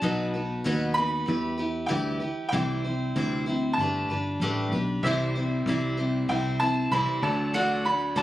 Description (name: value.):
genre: folk.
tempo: 96 BPM.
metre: 4/4.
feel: straight.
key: unclear.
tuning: A4 = 435 Hz.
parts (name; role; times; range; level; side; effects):
bright upright piano; melody; 0.0-8.2 s; E5 to B5; -29 LUFS; right 1 dB; none.
picked steel-string acoustic guitar; accompaniment; 0.0-8.2 s; B2 to D5; -28 LUFS; left 1 dB; none.
fingered electric bass; bass; 0.0-8.2 s; G1 to E2; -30 LUFS; right 1 dB; none.
bright baby grand piano; accompaniment; 5.0-8.2 s; C2 to E5; -36 LUFS; right 2 dB; none.
room: small room ambience.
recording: recorded on a phone in the room, studio ambience.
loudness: -24 LUFS.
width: side -14 dB against mid.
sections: 0.0-8.2 A section.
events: none.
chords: 0.0 B; 1.3 Em; 2.5 C; 3.8 Gadd9; 5.0 C; 7.2 D.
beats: | 0.03 0.66 1.28 1.91 | 2.54 3.16 3.79 4.42 | 5.04 5.67 6.29 6.92 | 7.55 8.17.